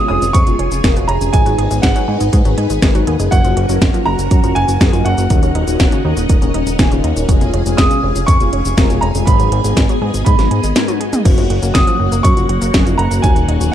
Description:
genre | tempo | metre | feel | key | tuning
italo disco | 121 BPM | 4/4 | straight | unclear | A4 = 439 Hz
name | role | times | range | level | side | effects
clear grand piano | melody | 0.0-13.7 s | Gb5 to Eb6 | -19 LUFS | right 2 dB | ping-pong delay
string machine, full ensemble | sustained chords | 0.0-13.7 s | Bb3 to Ab5 | -21 LUFS | right 1 dB | phaser, ensemble chorus
analog pluck | arpeggios | 0.0-13.7 s | Cb3 to Ab4 | -25 LUFS | right 2 dB | chorus, ping-pong delay
mellow synth brass | stabs | 0.0-13.7 s | Ab2 to Bb4 | -22 LUFS | left 3 dB | chorus
fat analog bass | bass | 0.1-13.7 s | Eb1 to Ab2 | -17 LUFS | equal | none
house drum kit | drums | 0.2-13.7 s | cabasa, crash cymbal, hi-hat, snare drum, toms | -20 LUFS | equal | none
electronic kick drum | drums | 0.3-13.3 s | none | -14 LUFS | equal | none
room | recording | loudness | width
digital ambience | dark, warm production | -11 LUFS | side -10 dB against mid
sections
0.0-13.7 A section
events
break 10.8-11.3; drum fill 10.8-11.3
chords
0.0 Db/F; 1.3 Abm; 3.3 Gb; 5.3 Ebm7; 7.3 Db/F; 9.3 Abm; 11.3 Gb; 13.2 Ebm7

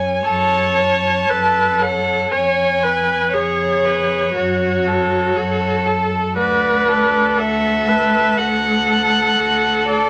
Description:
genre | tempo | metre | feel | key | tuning
classical, slow romantic movement for string quartet | 59 BPM | 4/4 | rubato | F# minor | A4 = 436 Hz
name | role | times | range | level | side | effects
rich violin | melody | 0.0-10.1 s | C#5 to A5 | -22 LUFS | equal | none
clear violin | second line | 0.0-10.1 s | F#4 to C#5 | -24 LUFS | equal | none
warm cello | bass | 0.0-10.1 s | D2 to F#2 | -26 LUFS | equal | none
rich viola | accompaniment | 0.2-10.1 s | F#4 to C#5 | -21 LUFS | equal | none
room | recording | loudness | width
moderate stone room reverb, RT60 1.0 s | none | -17 LUFS | mono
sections
0.0-10.1 A section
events
none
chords
0.0 F#m; 2.3 C#7/E#; 4.4 F#m; 6.4 D

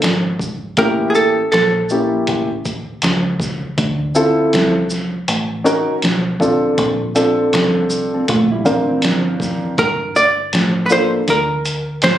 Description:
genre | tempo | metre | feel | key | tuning
hip hop, jazz-hop | 80 BPM | 4/4 | swing 62% on 16ths | unclear | A4 = 441 Hz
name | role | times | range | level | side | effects
hollow-body jazz guitar | melody | 0.0-3.4, 9.8-12.2 s | Ab4 to D5 | -15 LUFS | right 2 dB | none
deep dub fingered electric bass | bass | 0.0-12.2 s | G1 to D2 | -24 LUFS | equal | none
lo-fi sampler-style drum kit | drums | 0.0-12.2 s | hi-hat, kick drum, shaker, snare drum | -19 LUFS | equal | none
dark baby grand piano | accompaniment | 0.8-11.2 s | Bb3 to F5 | -16 LUFS | equal | none
mellow electric guitar | second line | 8.1-9.7 s | E3 to A4 | -20 LUFS | right 2 dB | analog delay
room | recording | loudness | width
light reverb | recorded on a phone in the room, club reverb, compression | -14 LUFS | side -12 dB against mid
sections
0.0-12.2 A section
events
none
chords
0.0 N.C.; 0.8 A7b9; 3.8 Dm9; 6.0 Bm7b5; 6.8 Bbmaj9; 9.8 Gm9

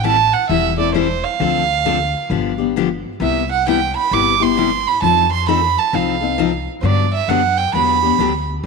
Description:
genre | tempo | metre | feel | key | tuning
acoustic string swing (jazz manouche) | 132 BPM | 4/4 | swing 63% on 8ths | G major | A4 = 440 Hz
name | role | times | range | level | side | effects
warm violin | melody | 0.0-8.4 s | C5 to D6 | -17 LUFS | right 10 dB | none
picked steel-string acoustic guitar | accompaniment | 0.0-8.3 s | C3 to A4 | -19 LUFS | left 14 dB | none
upright bass | bass | 0.0-8.7 s | E1 to G2 | -23 LUFS | left 1 dB | none
room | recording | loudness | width
moderate echo chamber reverb, RT60 2.1 s | 1960s-style stereo with parts hard left and right | -14 LUFS | side -4 dB against mid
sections
0.0-8.7 A section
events
none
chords
0.0 Am7; 1.4 Dm7; 2.3 G7; 3.2 Cmaj7; 5.0 F7; 6.8 Gmaj7

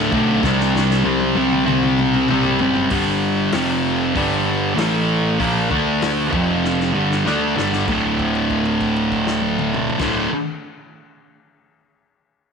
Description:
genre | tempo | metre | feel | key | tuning
garage rock duo or trio | 97 BPM | 4/4 | straight | D minor | A4 = 440 Hz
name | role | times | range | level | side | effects
thick fuzz guitar | riff | 0.0-10.3 s | D2 to D4 | -17 LUFS | equal | distortion
fuzz picked electric bass | bass | 0.0-10.3 s | D1 to D2 | -27 LUFS | equal | overdrive, tube saturation
vintage drum kit | drums | 0.1-10.1 s | crash cymbal, hi-hat, kick drum, snare drum, toms | -27 LUFS | left 4 dB | none
room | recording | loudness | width
moderate echo chamber reverb, RT60 2.1 s | 1960s-style stereo | -16 LUFS | side -6 dB against mid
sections
0.0-2.9 A section; 2.9-7.9 B section; 7.9-10.4 C section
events
drum fill 0.4-2.9, 6.6-7.9; held note 7.9-10.0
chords
0.4 C5; 2.9 G5; 3.5 F5; 4.2 G5; 4.8 A5; 5.4 Bb5; 5.7 D5; 6.3 F5; 7.0 G5; 7.9 D5

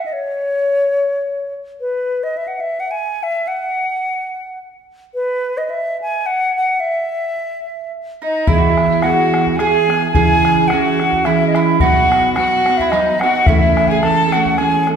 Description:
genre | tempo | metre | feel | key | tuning
celtic folk, Celtic waltz | 108 BPM | 3/4 | swing 55% on 8ths | E major | A4 = 444 Hz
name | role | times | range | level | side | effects
wooden flute | melody | 0.0-14.9 s | B4 to A5 | -17 LUFS | equal | none
mandolin | second line | 8.2-14.9 s | D#4 to A4 | -22 LUFS | right 5 dB | none
rich fiddle | second line | 8.2-14.7 s | D#4 to A4 | -22 LUFS | left 5 dB | none
fingerpicked steel-string acoustic guitar | accompaniment | 8.5-15.0 s | B2 to B4 | -17 LUFS | right 4 dB | none
bodhran | percussion | 8.5-15.0 s | none | -20 LUFS | left 2 dB | none
room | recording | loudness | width
wet recital hall reverb, RT60 1.6 s | recorded in a church or concert hall | -14 LUFS | side -7 dB against mid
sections
0.0-8.5 A section; 8.5-15.0 B section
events
none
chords
0.0 N.C.; 8.5 E; 10.1 C#m; 11.8 B; 13.5 A/C#

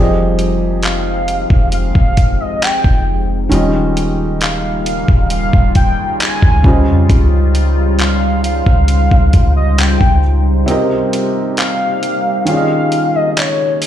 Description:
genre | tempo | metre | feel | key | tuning
contemporary R&B | 67 BPM | 4/4 | straight | F minor | A4 = 440 Hz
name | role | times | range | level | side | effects
felt-muted upright piano | accompaniment | 0.0-13.9 s | C3 to Eb5 | -18 LUFS | right 1 dB | none
deep dark ambient pad | sustained chords | 0.0-13.9 s | C3 to G5 | -20 LUFS | left 1 dB | chorus, built-in reverb, sidechain pumping
soft 808-style bass | bass | 0.0-10.7 s | Eb1 to F2 | -14 LUFS | equal | none
dusty soul sampler-style drum kit | drums | 0.4-13.9 s | handclaps, hi-hat, kick drum | -14 LUFS | equal | none
warm velvety synth lead | melody | 0.8-13.9 s | Db5 to Ab5 | -19 LUFS | equal | chorus, ping-pong delay
room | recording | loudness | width
digital ambience | played on a big sound system in a bare room, large studio reverb | -11 LUFS | side -11 dB against mid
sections
0.0-13.9 A section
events
break 10.7-13.9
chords
0.0 Fm9; 3.5 Eb9; 6.6 Dbmaj9#11; 10.7 Cm7; 12.5 Eb7sus4

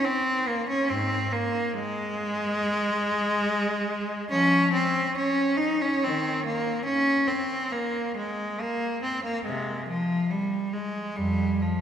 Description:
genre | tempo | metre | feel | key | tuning
classical, baroque-style suite movement for unaccompanied cello | 70 BPM | 4/4 | rubato | unclear | A4 = 440 Hz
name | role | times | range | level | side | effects
clear cello | solo | 0.0-11.8 s | F2 to Eb4 | -24 LUFS | equal | none
room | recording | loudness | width
wet church reverb, RT60 3.4 s | recorded in a church or concert hall | -24 LUFS | side -9 dB against mid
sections
0.0-11.8 A section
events
none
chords
none

